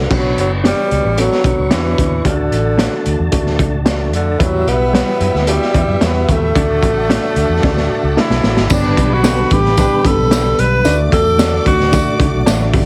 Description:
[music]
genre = uptempo 1960s-style soul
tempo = 112 BPM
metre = 4/4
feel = straight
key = D major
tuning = A4 = 443 Hz
[part]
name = breathy tenor saxophone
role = melody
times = 0.0-12.4 s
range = D3 to B4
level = -20 LUFS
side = equal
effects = plate reverb
[part]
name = tonewheel organ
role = sustained chords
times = 0.0-12.9 s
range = D3 to C#6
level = -28 LUFS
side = equal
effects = chorus vibrato, fast rotary speaker, plate reverb
[part]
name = vintage muted fingered electric bass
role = bass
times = 0.0-12.9 s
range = F#1 to F#2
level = -20 LUFS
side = equal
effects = none
[part]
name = dark upright piano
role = accompaniment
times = 0.1-12.9 s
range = G3 to D5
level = -24 LUFS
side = equal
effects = plate reverb
[part]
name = raw garage drum kit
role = drums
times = 0.1-12.9 s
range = crash cymbal, hi-hat, kick drum, snare drum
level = -19 LUFS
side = equal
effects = none
[part]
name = mellow electric guitar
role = stabs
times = 0.6-12.6 s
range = G3 to C#5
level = -25 LUFS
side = equal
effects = none
[part]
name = warm studio violin section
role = second line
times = 4.4-12.9 s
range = B3 to D6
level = -28 LUFS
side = equal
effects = plate reverb
[part]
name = tambourine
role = percussion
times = 8.7-12.6 s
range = none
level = -31 LUFS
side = equal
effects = none
[part]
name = warm horn section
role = second line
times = 9.8-10.1 s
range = D4 to B4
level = -28 LUFS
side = equal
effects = plate reverb
[sound]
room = moderate club reverb, RT60 0.6 s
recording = heavily compressed radio sound, multiband compression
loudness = -14 LUFS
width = mono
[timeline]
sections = 0.1-8.7 A section; 8.7-12.9 B section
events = drum fill 7.6-8.7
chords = 0.1 Bmadd9; 2.3 D; 4.4 Emadd9; 6.6 D; 8.7 G; 10.9 D

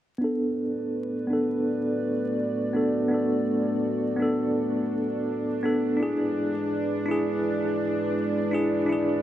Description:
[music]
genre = trip hop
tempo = 83 BPM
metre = 4/4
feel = straight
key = unclear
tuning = A4 = 442 Hz
[part]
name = bell-like tine electric piano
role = accompaniment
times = 0.2-9.2 s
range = B3 to A4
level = -25 LUFS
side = equal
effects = tremolo, low-pass filter, tape echo
[part]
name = dark analog pad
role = sustained chords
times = 0.2-9.2 s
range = G#3 to D5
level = -30 LUFS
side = equal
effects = chorus
[part]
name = bowed-like drone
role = texture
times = 3.5-9.2 s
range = D4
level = -35 LUFS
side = right 3 dB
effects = built-in reverb
[sound]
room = light reverb, digital ambience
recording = vinyl crackle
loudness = -24 LUFS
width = side -12 dB against mid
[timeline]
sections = 0.2-9.2 A section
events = filter sweep on tine electric piano 0.2-9.2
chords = 0.2 Bm7; 6.0 E7

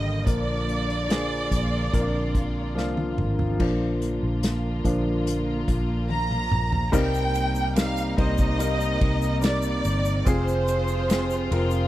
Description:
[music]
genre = pop ballad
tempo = 72 BPM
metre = 4/4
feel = straight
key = unclear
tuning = A4 = 439 Hz
[part]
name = warm symphonic violin section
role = melody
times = 0.0-11.9 s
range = C5 to Bb5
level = -28 LUFS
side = right 1 dB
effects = none
[part]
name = warm baby grand piano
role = accompaniment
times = 0.0-11.9 s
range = Bb2 to C5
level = -28 LUFS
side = equal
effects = none
[part]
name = dark studio string section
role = sustained chords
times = 0.0-11.9 s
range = C3 to G5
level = -32 LUFS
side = right 1 dB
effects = none
[part]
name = vintage muted fingered electric bass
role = bass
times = 0.0-11.9 s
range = F1 to C2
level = -26 LUFS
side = equal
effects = none
[part]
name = unplugged drum kit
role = drums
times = 0.3-11.7 s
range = crash cymbal, hi-hat, kick drum, ride cymbal, snare drum, toms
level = -26 LUFS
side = equal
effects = none
[part]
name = egg shaker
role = percussion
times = 6.9-11.9 s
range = none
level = -42 LUFS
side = left 10 dB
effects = none
[sound]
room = little or no reverb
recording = dry, close 1970s-style studio recording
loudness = -22 LUFS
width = side -14 dB against mid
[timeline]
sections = 0.0-3.6 A section; 3.6-6.9 B section; 6.9-11.9 C section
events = drum fill 2.8-3.6, 6.1-6.9; grand piano solo 3.6-6.9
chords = 0.3 Bb; 6.9 Cm7; 10.3 Fm

